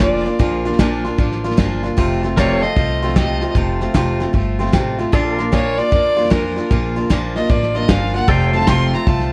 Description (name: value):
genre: honky-tonk and classic country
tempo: 152 BPM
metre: 4/4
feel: swing 66% on 8ths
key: Bb major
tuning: A4 = 440 Hz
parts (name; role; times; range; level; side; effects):
- clear fiddle; second line; 0.0-9.3 s; Bb4 to C6; -23 LUFS; equal; none
- picked steel-string acoustic guitar; accompaniment; 0.0-9.3 s; F2 to F4; -22 LUFS; equal; none
- pedal steel guitar; sustained chords; 0.0-9.3 s; A4 to F5; -28 LUFS; equal; none
- upright bass; bass; 0.0-9.3 s; F1 to F2; -25 LUFS; equal; none
- soft brush drum kit; drums; 0.0-9.3 s; hi-hat, kick drum, snare drum; -21 LUFS; equal; none
room: moderate studio reverb, RT60 0.8 s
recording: worn, warbling old tape, cassette tape, warbly pitch drift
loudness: -17 LUFS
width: mono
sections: 0.0-9.3 A section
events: fiddle solo 0.0-9.3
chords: 0.0 Bb; 2.0 F; 5.1 Bb; 8.3 F